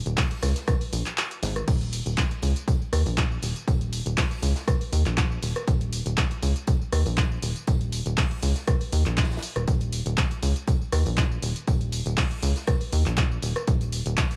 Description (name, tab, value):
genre	deep house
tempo	120 BPM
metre	4/4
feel	swing 54% on 16ths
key	unclear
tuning	A4 = 440 Hz
part	rubbery square bass	bass	0.1-14.1 s	Eb1 to Eb2	-28 LUFS	equal	tube saturation, sidechain pumping
part	punchy analog drum machine	drums	0.1-14.4 s	crash cymbal, handclaps, hi-hat, rim click, tambourine	-33 LUFS	equal	none
part	electronic kick drum	drums	0.2-14.3 s	none	-27 LUFS	equal	none
part	unplugged drum kit	drums	0.2-14.4 s	hi-hat, snare drum, tambourine	-46 LUFS	equal	none
room	little or no reverb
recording	small room ambience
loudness	-25 LUFS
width	mono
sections	0.0-14.4 A section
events	kick drops out 1.2-1.7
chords	none